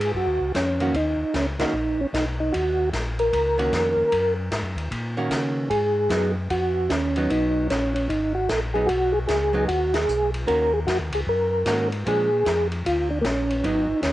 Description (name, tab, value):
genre	soul jazz organ trio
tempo	151 BPM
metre	4/4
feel	swing 64% on 8ths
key	Eb minor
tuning	A4 = 440 Hz
part	percussive tonewheel organ	melody	0.0-14.1 s	Bb3 to Bb4	-22 LUFS	equal	slow rotary speaker, chorus vibrato
part	mellow tonewheel organ	bass	0.0-14.1 s	Ab1 to Db3	-28 LUFS	left 1 dB	overdrive, chorus vibrato, slow rotary speaker
part	vintage drum kit	drums	0.0-14.1 s	hi-hat, kick drum, ride cymbal, snare drum	-30 LUFS	left 1 dB	cassette tape
part	archtop guitar, miked and amplified	accompaniment	0.8-13.9 s	Eb3 to Gb4	-28 LUFS	right 2 dB	none
room	light reverb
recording	home recording on cassette, nothing above 11.0 kHz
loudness	-21 LUFS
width	side -15 dB against mid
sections	0.0-14.1 A section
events	band accent 1.5, 9.9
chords	0.0 Ebm7; 5.7 Abm7; 10.5 Ebm7; 12.1 Bb7